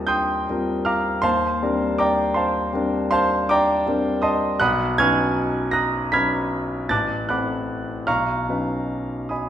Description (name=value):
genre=classical, impressionist solo piano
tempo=48-55 BPM (dotted quarters)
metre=9/8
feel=rubato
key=unclear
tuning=A4 = 439 Hz
part: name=clear concert grand piano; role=solo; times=0.0-9.5 s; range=A1 to B6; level=-19 LUFS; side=equal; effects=none
room=wet recital hall reverb, RT60 1.4 s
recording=recorded in a church or concert hall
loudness=-19 LUFS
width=side -10 dB against mid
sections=0.0-9.5 A section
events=none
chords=0.0 Eb69; 4.6 Badd9; 6.9 Am6; 8.1 Badd9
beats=0.08 | 1.24 2.35 3.48 | 4.58 5.71 6.89 | 8.07 9.30